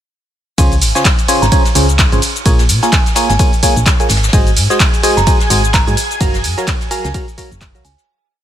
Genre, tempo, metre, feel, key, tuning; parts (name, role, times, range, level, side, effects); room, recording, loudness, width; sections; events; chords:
piano house; 128 BPM; 4/4; swing 58% on 16ths; Db major; A4 = 440 Hz
barking FM electric piano; riff; 0.6-7.8 s; Db3 to Bb5; -17 LUFS; equal; chorus, phaser, sidechain pumping, dub echo
solid FM bass; bass; 0.6-8.0 s; Gb1 to Bb2; -15 LUFS; equal; tube saturation, sidechain pumping
electronic kick drum; drums; 0.6-7.7 s; -14 LUFS; equal
jazz brush drum kit; drums; 0.6-8.1 s; ride cymbal, snare drum; -25 LUFS; right 1 dB; sidechain pumping on cymbals, high-pass filter on cymbals, high-pass filter on snare, high-pass filter on room
punchy analog drum machine; drums; 0.6-8.1 s; cabasa, handclaps, hi-hat, ride cymbal; -17 LUFS; equal
glassy synth bell; melody; 1.4-8.1 s; Ab5 to Bb5; -22 LUFS; right 3 dB; chorus, dub echo
analog string pad; sustained chords; 4.3-8.1 s; Ab4 to Ab5; -23 LUFS; right 1 dB; ensemble chorus, sidechain pumping
little or no reverb; -10 LUFS; side -11 dB against mid
0.6-8.1 drop
drop 0.6-8.1; fade-out 5.6-8.1
0.6 Dbmaj7; 2.5 Bbm7; 4.1 Ab7; 6.0 Gbmaj7